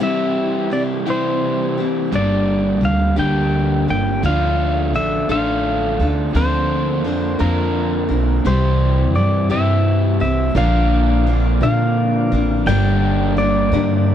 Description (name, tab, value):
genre	rock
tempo	57 BPM (dotted quarters)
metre	6/8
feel	straight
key	unclear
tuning	A4 = 438 Hz
part	clean lap steel guitar	melody	0.0-14.1 s	Bb4 to G5	-22 LUFS	equal	none
part	picked steel-string acoustic guitar	accompaniment	0.0-14.1 s	G2 to Bb4	-23 LUFS	left 6 dB	none
part	crunchy overdriven guitar	riff	0.0-14.1 s	G2 to Bb4	-21 LUFS	right 2 dB	none
part	upright bass	bass	2.1-14.1 s	G1 to Bb2	-18 LUFS	equal	none
part	clear upright piano	accompaniment	10.6-14.1 s	F4 to D5	-31 LUFS	right 7 dB	none
part	mellow tonewheel organ	sustained chords	10.6-14.1 s	Bb4 to D6	-32 LUFS	equal	slow rotary speaker
room	little or no reverb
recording	dry, close 1970s-style studio recording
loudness	-15 LUFS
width	side -10 dB against mid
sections	0.0-10.6 A section; 10.6-14.1 B section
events	none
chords	0.0 C; 2.1 Gm; 4.2 Dm; 6.4 Bbadd9/D; 8.5 C; 10.6 Bb; 12.7 Gm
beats	| 0.02 1.07 | 2.13 3.19 | 4.24 5.30 | 6.35 7.41 | 8.46 9.51 | 10.57 11.62 | 12.67 13.73